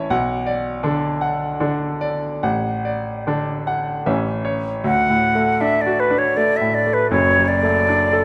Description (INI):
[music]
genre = classical, romantic duo for flute and grand piano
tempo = 71-83 BPM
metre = 3/4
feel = rubato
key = D major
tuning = A4 = 441 Hz
[part]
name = bright grand piano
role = accompaniment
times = 0.0-8.2 s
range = F#1 to A5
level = -22 LUFS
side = equal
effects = none
[part]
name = silver concert flute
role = melody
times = 4.9-8.2 s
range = B4 to F#5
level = -19 LUFS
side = equal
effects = none
[sound]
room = moderate scoring stage reverb, RT60 2.0 s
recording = none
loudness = -19 LUFS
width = mono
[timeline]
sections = 0.0-4.8 A section; 4.8-8.2 B section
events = none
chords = 0.1 Bm; 2.4 D/A; 4.1 A; 4.8 D; 7.1 D/F#